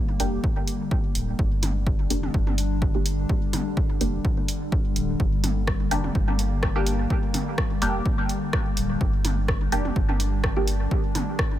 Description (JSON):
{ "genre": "dub techno", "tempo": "126 BPM", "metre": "4/4", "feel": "swing 55% on 16ths", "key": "G minor", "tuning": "A4 = 440 Hz", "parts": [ { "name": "warbly tape-like pad", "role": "sustained chords", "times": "0.0-11.6 s", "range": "D3 to D4", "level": "-30 LUFS", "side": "left 2 dB", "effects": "chorus, built-in reverb, sidechain pumping" }, { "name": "filtered dub chord stab", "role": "stabs", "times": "0.2-10.7 s", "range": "Bb3 to G4", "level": "-31 LUFS", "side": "right 1 dB", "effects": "phaser, sidechain pumping, dub echo" }, { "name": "soft dub sub bass", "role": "bass", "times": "0.2-10.9 s", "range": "D1 to G1", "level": "-27 LUFS", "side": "equal", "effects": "sidechain pumping" }, { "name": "punchy analog drum machine", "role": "drums", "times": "0.2-11.5 s", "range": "hi-hat, rim click", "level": "-31 LUFS", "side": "equal", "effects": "none" }, { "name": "electronic kick drum", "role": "drums", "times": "0.4-11.5 s", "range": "none", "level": "-25 LUFS", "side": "equal", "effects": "none" }, { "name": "electronic toms and congas", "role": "percussion", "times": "1.6-11.3 s", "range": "none", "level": "-34 LUFS", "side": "equal", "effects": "sidechain pumping on toms, sidechain pumping on perc, dub echo" } ], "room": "little or no reverb", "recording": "none", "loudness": "-22 LUFS", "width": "side -12 dB against mid", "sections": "0.0-11.6 A section", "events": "none", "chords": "0.0 Gm" }